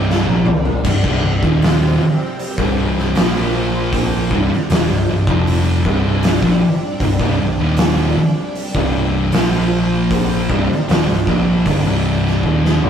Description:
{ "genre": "stoner and doom metal", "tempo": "78 BPM", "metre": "4/4", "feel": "straight", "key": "C minor", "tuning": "A4 = 440 Hz", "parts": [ { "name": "string machine, violins", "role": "sustained chords", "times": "0.0-12.9 s", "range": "C3 to C5", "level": "-26 LUFS", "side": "right 1 dB", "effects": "ensemble chorus" }, { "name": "thick fuzz guitar", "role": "riff", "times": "0.0-12.9 s", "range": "C2 to Bb3", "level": "-19 LUFS", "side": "left 3 dB", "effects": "distortion" }, { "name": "thick fuzz guitar", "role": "riff", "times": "0.0-12.9 s", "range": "C2 to Bb3", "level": "-20 LUFS", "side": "right 4 dB", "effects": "distortion" }, { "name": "overdriven picked electric bass", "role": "bass", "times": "0.0-12.9 s", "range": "C1 to Bb1", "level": "-20 LUFS", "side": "equal", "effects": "none" }, { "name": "oversized low-tuned drum kit", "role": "drums", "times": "0.1-12.9 s", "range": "crash cymbal, hi-hat, kick drum, snare drum, toms", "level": "-18 LUFS", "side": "equal", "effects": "none" } ], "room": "light reverb", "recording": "rough rehearsal-room recording, warm saturation", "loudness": "-14 LUFS", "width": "side -8 dB against mid", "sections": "0.0-12.9 A section", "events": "drum fill 0.1-0.9, 12.4-12.9", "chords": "0.0 Cm; 3.2 Bb5; 4.3 Cm; 9.3 Bb5; 10.5 Cm" }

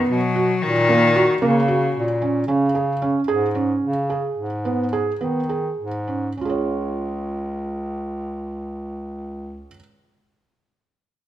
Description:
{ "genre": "contemporary instrumental, chamber music in an uneven meter", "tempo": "202-226 BPM (eighths)", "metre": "7/8", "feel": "straight", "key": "Db mixolydian", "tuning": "A4 = 441 Hz", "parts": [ { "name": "clear cello", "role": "second line", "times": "0.0-2.2 s", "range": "Db3 to Gb3", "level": "-21 LUFS", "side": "left 4 dB", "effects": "none" }, { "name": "felt-muted upright piano", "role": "arpeggios", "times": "0.0-9.8 s", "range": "Bb3 to Db5", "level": "-22 LUFS", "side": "right 2 dB", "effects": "none" }, { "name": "warm bass clarinet", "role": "bass", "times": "0.0-9.7 s", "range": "Db2 to Eb3", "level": "-24 LUFS", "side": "equal", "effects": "none" } ], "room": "moderate recital hall reverb, RT60 1.4 s", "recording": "none", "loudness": "-19 LUFS", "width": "side -12 dB against mid", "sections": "0.0-2.5 A section; 2.5-6.4 B section; 6.4-10.5 C section", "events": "slowing down 2.5-6.4", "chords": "0.0 Cb5; 0.6 Gb/Bb; 2.5 Db5; 4.4 Abm; 6.4 Db" }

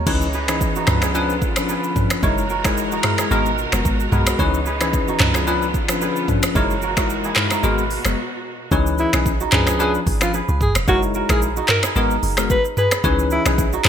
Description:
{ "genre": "afrobeats", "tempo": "111 BPM", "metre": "4/4", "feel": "swing 55% on 16ths", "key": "C# dorian", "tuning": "A4 = 440 Hz", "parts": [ { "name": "kora", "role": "riff", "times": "0.0-13.9 s", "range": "D#4 to C#5", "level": "-26 LUFS", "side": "right 4 dB", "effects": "digital delay" }, { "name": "bell-like tine electric piano", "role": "accompaniment", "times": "0.1-13.9 s", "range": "E3 to B4", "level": "-22 LUFS", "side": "left 4 dB", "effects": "analog chorus" }, { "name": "bright studio string section", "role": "sustained chords", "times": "0.1-8.7 s", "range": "B2 to A#4", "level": "-28 LUFS", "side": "right 2 dB", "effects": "none" }, { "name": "deep log drum bass", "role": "bass", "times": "0.1-13.9 s", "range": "E#1 to C#2", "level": "-23 LUFS", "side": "equal", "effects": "none" }, { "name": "afro-pop drum kit", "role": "drums", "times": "0.1-13.9 s", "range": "crash cymbal, finger snaps, handclaps, hi-hat, kick drum, rim click, shaker, toms", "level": "-20 LUFS", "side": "equal", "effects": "gated reverb" }, { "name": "breathy alto saxophone", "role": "melody", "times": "9.0-13.9 s", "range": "E4 to B4", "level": "-23 LUFS", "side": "equal", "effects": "digital delay" } ], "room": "moderate plate reverb, RT60 2.0 s", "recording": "bright 1980s-style digital production", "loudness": "-16 LUFS", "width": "side -8 dB against mid", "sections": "0.1-8.7 A section; 8.7-13.9 B section", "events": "break 8.2-8.7", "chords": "0.1 C#m9; 0.9 C#7b9; 2.2 F#13; 3.3 G#m9; 4.4 C#m9; 5.2 C#7b9; 6.6 F#13; 7.6 G#m9; 8.7 C#m9; 9.5 C#7b9; 10.9 F#13; 12.0 G#m9; 13.0 C#m9" }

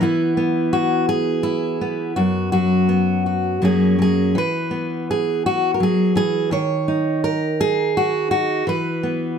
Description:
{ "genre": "folk, solo fingerstyle acoustic guitar", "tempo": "83 BPM", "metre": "3/4", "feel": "straight", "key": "unclear", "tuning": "A4 = 440 Hz", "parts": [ { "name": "fingerpicked steel-string acoustic guitar", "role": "solo", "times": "0.0-9.4 s", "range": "F#2 to C#5", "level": "-17 LUFS", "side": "equal", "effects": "none" } ], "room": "light reverb", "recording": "close, detailed microphones", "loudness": "-17 LUFS", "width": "side -7 dB against mid", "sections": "0.0-9.4 A section", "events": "none", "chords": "0.0 E5; 2.2 F#sus4; 3.6 F#add9; 4.3 Esus2; 6.5 N.C.; 8.7 E5" }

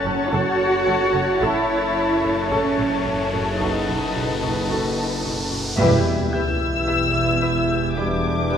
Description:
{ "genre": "cinematic, suspense film score", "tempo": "55 BPM", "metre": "4/4", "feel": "straight", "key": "unclear", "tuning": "A4 = 444 Hz", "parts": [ { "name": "muted symphonic violin section", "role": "melody", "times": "0.0-8.6 s", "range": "C#5 to E6", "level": "-28 LUFS", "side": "left 5 dB", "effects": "none" }, { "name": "muted symphonic violin section", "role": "second line", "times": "0.0-8.6 s", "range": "B4 to A5", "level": "-26 LUFS", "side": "left 3 dB", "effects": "none" }, { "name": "glass harmonica", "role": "sustained chords", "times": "0.0-8.6 s", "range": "G4 to F#5", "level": "-30 LUFS", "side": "left 1 dB", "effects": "none" }, { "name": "muted symphonic cello section", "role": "bass", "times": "0.0-8.6 s", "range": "E2 to F#4", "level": "-25 LUFS", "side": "right 2 dB", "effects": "none" }, { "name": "bowed-like drone", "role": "drone", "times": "0.0-8.6 s", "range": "F#1 to E2", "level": "-28 LUFS", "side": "equal", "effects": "built-in reverb" }, { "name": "riser and sub drop", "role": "sound effects", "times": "0.6-8.6 s", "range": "none", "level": "-30 LUFS", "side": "equal", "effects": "none" }, { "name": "muted symphonic violin section", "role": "texture", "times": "0.0-8.6 s", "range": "F#6 to A6", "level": "-33 LUFS", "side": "left 4 dB", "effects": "none" }, { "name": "warm baby grand piano", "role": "texture", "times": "0.0-8.6 s", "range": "G4 to G6", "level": "-36 LUFS", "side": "left 2 dB", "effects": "none" }, { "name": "muted symphonic viola section", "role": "accompaniment", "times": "0.1-8.6 s", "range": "C#4 to A4", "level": "-30 LUFS", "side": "right 1 dB", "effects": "none" }, { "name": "muted symphonic double bass section", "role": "bass", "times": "0.1-8.6 s", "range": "E1 to B1", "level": "-28 LUFS", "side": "right 4 dB", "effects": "none" }, { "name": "warm trombone section", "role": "sustained chords", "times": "5.8-8.4 s", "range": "B2 to G3", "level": "-28 LUFS", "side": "right 1 dB", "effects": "none" }, { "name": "mellow French horn section", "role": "sustained chords", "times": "6.3-8.6 s", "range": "D4 to E4", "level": "-25 LUFS", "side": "left 2 dB", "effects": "none" } ], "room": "moderate scoring stage reverb, RT60 1.7 s", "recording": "none", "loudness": "-18 LUFS", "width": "side -8 dB against mid", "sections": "0.0-5.8 A section; 5.8-8.6 B section", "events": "riser 0.6-5.8; band accent 5.8-6.9; impact 5.8-8.6", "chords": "0.0 F#m; 1.4 A; 3.6 B7/F#; 5.8 Em" }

